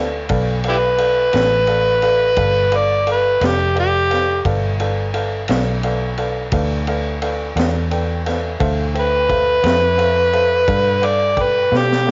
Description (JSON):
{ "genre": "slow blues", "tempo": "58 BPM (dotted quarters)", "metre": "12/8", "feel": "straight", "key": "G mixolydian", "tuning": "A4 = 441 Hz", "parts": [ { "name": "warm upright piano", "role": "accompaniment", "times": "0.0-12.1 s", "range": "A4 to G5", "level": "-26 LUFS", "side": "equal", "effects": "cassette tape" }, { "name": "vintage muted fingered electric bass", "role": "bass", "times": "0.0-12.1 s", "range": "F1 to B2", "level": "-24 LUFS", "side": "equal", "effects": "none" }, { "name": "vintage drum kit", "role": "drums", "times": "0.3-12.1 s", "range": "kick drum, ride cymbal, snare drum", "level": "-27 LUFS", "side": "equal", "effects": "cassette tape" }, { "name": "overdriven harmonica", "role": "melody", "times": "0.7-12.1 s", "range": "E4 to D5", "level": "-17 LUFS", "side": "equal", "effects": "cassette tape" } ], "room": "light reverb", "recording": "home recording on cassette, nothing above 7.5 kHz", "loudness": "-17 LUFS", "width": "mono", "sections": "0.0-12.1 A section", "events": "harmonica solo 0.0-12.1; drum fill 11.7-12.1", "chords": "0.0 G9; 8.6 Dm7; 10.7 G9" }